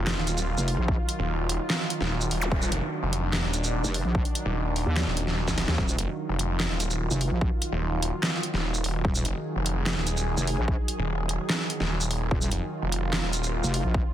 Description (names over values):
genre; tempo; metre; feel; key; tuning
heavy wobble dubstep; 147 BPM; 4/4; half-time; Eb harmonic minor; A4 = 441 Hz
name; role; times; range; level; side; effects
lush unison pad; sustained chords; 0.0-14.1 s; Eb3 to Ab4; -32 LUFS; right 1 dB; chorus, sidechain pumping
snarling distorted saw bass; bass; 0.0-13.6 s; Eb1 to F1; -28 LUFS; equal; distortion, overdrive
dubstep drum kit; drums; 0.1-13.8 s; handclaps, hi-hat, shaker, snare drum; -28 LUFS; right 1 dB; overdrive
wobble bass; bass; 0.6-14.0 s; Eb1 to Eb2; -26 LUFS; equal; chorus, overdrive
electronic kick drum; drums; 0.9-14.0 s; none; -27 LUFS; equal; overdrive
zap; sound effects; 2.4-2.5 s; none; -32 LUFS; equal; none
room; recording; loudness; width
little or no reverb; dense, heavily limited modern master; -24 LUFS; side -11 dB against mid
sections
0.0-14.1 A section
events
drum fill 5.5-5.8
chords
0.0 Ebmadd9